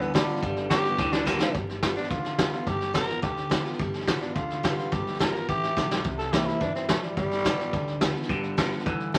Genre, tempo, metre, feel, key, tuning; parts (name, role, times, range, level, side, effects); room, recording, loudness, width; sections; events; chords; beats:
rockabilly; 213 BPM; 4/4; straight; G mixolydian; A4 = 440 Hz
growling tenor saxophone; melody; 0.0-8.0 s; F3 to Bb4; -33 LUFS; equal
picked steel-string acoustic guitar; accompaniment; 0.0-9.2 s; C3 to F4; -34 LUFS; equal
twangy electric guitar; riff; 0.0-1.5, 8.3-9.2 s; G2 to E3; -33 LUFS; equal; phaser
upright bass; bass; 0.0-9.2 s; G1 to D2; -39 LUFS; equal
vintage brush drum kit; drums; 0.0-9.2 s; hi-hat, kick drum, snare drum; -30 LUFS; equal
moderate club reverb, RT60 0.5 s; vinyl crackle; -27 LUFS; mono
0.0-1.6 A section; 1.6-9.2 B section
tenor saxophone solo 0.0-1.6; drum fill 1.0-1.6, 5.8
0.0 G7; 6.0 C7; 7.2 G7
0.15 | 0.43 0.71 0.99 1.27 | 1.55 1.83 2.11 2.39 | 2.67 2.96 3.24 3.52 | 3.80 4.08 4.36 4.64 | 4.92 5.21 5.49 5.77 | 6.05 6.33 6.61 6.89 | 7.17 7.46 7.74 8.02 | 8.30 8.58 8.86 9.14